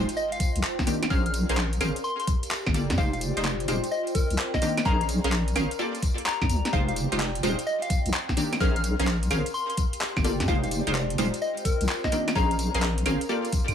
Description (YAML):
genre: UK garage, two-step garage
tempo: 128 BPM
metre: 4/4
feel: swing 66% on 16ths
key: unclear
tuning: A4 = 441 Hz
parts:
  - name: punchy chord stab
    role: stabs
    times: 0.0-13.5 s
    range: Eb3 to F5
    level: -30 LUFS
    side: equal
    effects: chorus, digital delay
  - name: deep soft wobble bass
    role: bass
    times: 0.0-13.7 s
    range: Eb1 to G2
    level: -27 LUFS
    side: equal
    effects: chorus
  - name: sub drop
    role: sound effects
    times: 0.0-1.1 s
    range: none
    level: -44 LUFS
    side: left 1 dB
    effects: none
  - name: warbly tape-like pad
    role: texture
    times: 0.1-13.7 s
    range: C4 to C6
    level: -35 LUFS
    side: left 1 dB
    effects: chorus, built-in reverb, phaser, sidechain pumping
  - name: garage drum kit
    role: drums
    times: 0.1-13.7 s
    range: claves, handclaps, hi-hat, snare drum, tambourine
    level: -31 LUFS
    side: equal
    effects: none
  - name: soft struck synth lead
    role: melody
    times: 0.2-12.6 s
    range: Bb4 to F6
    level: -32 LUFS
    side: left 2 dB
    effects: chorus, digital delay
  - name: electronic kick drum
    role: drums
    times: 0.4-13.7 s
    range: none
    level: -26 LUFS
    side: equal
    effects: none
room: light reverb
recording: vinyl crackle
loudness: -23 LUFS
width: side -8 dB against mid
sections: 0.0-13.7 A section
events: impact 0.0-1.1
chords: 0.2 Cm9; 1.1 Bbm9; 2.0 Gm9; 3.0 Fm9; 3.9 Cm9; 4.9 Bbm9; 5.8 Gm9; 6.7 Fm9; 7.7 Cm9; 8.6 Bbm9; 9.5 Gm9; 10.5 Fm9; 11.4 Cm9; 12.4 Bbm9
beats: 0.17 0.63 | 1.10 1.57 2.04 2.51 | 2.98 3.45 3.92 4.38 | 4.85 5.32 5.79 6.26 | 6.73 7.20 7.67 8.13 | 8.60 9.07 9.54 10.01 | 10.48 10.95 11.42 11.88 | 12.35 12.82 13.29